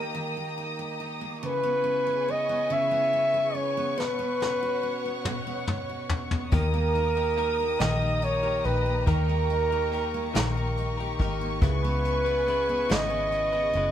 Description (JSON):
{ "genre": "six-eight pop ballad", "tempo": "47 BPM (dotted quarters)", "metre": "6/8", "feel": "straight", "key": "unclear", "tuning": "A4 = 440 Hz", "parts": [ { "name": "breathy flugelhorn", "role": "melody", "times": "0.0-13.9 s", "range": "A#4 to E5", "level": "-26 LUFS", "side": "equal", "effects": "none" }, { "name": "picked steel-string acoustic guitar", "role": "accompaniment", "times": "0.0-13.9 s", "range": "B2 to G#4", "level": "-34 LUFS", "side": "right 2 dB", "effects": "none" }, { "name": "muted studio string section", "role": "sustained chords", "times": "0.0-13.9 s", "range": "E4 to D#6", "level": "-34 LUFS", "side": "left 1 dB", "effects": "none" }, { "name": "vintage brush drum kit", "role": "drums", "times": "4.0-13.9 s", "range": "hi-hat, kick drum, snare drum, toms", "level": "-27 LUFS", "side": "equal", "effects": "none" }, { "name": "direct-recorded clean electric guitar", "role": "arpeggios", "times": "6.5-13.9 s", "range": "C#3 to B4", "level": "-35 LUFS", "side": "left 6 dB", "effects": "none" }, { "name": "vintage muted fingered electric bass", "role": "bass", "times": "6.5-13.9 s", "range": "F#1 to D#2", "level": "-29 LUFS", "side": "left 1 dB", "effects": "none" } ], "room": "moderate studio ambience, RT60 0.5 s", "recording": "band playing live in one room", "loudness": "-24 LUFS", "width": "side -10 dB against mid", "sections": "0.0-13.9 A section", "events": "drum fill 4.0-6.5", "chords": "0.0 D#; 1.4 C#m7; 4.0 Bsus2; 6.5 D#; 11.6 C#m7" }